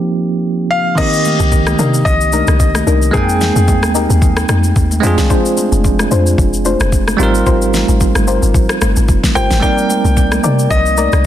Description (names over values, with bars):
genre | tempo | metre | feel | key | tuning
amapiano | 111 BPM | 4/4 | swing 55% on 16ths | C minor | A4 = 440 Hz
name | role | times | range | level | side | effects
bell-like tine electric piano | accompaniment | 0.0-11.3 s | Eb3 to G5 | -17 LUFS | right 5 dB | fast stereo tremolo
clear concert grand piano | melody | 0.7-3.9, 9.4-11.3 s | Ab4 to G5 | -17 LUFS | left 1 dB | tape echo
soft round pluck | stabs | 1.0-11.1 s | C4 to G5 | -20 LUFS | left 6 dB | chorus, tape echo
smooth R&B drum kit | drums | 1.0-11.2 s | crash cymbal, kick drum, rim click, shaker, snare drum | -16 LUFS | left 1 dB | none
congas | percussion | 1.0-11.1 s | none | -24 LUFS | left 4 dB | none
deep log drum bass | bass | 1.4-11.3 s | F1 to C3 | -14 LUFS | equal | none
room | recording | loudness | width
light reverb, digital ambience | dense, heavily limited modern master | -10 LUFS | side -11 dB against mid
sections
1.0-11.3 A section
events
break 0.0-1.0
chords
0.0 F9sus4; 1.0 Cm9; 3.1 Fm11; 5.0 Dm7b5; 7.2 Abmaj13; 9.6 Cm9